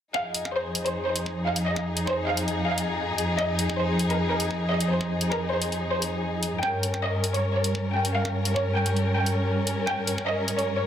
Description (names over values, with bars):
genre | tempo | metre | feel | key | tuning
heavy wobble dubstep | 148 BPM | 4/4 | half-time | F minor | A4 = 441 Hz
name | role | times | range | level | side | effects
warm studio violin section | melody | 0.1-10.9 s | Bb4 to G5 | -28 LUFS | equal | analog delay
warm studio string section | sustained chords | 0.1-10.9 s | F2 to Bb4 | -26 LUFS | equal | sidechain pumping
electronic kick drum | drums | 0.1-10.3 s | none | -34 LUFS | equal | high-pass filter on kick
electronic hi-hat | drums | 0.3-10.7 s | none | -30 LUFS | left 1 dB | none
room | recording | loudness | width
wet plate reverb, RT60 1.1 s, small room ambience | dreamy mix soaked in reverb | -24 LUFS | side -9 dB against mid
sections
0.1-10.9 A section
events
none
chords
0.1 Fm7; 6.6 Gdim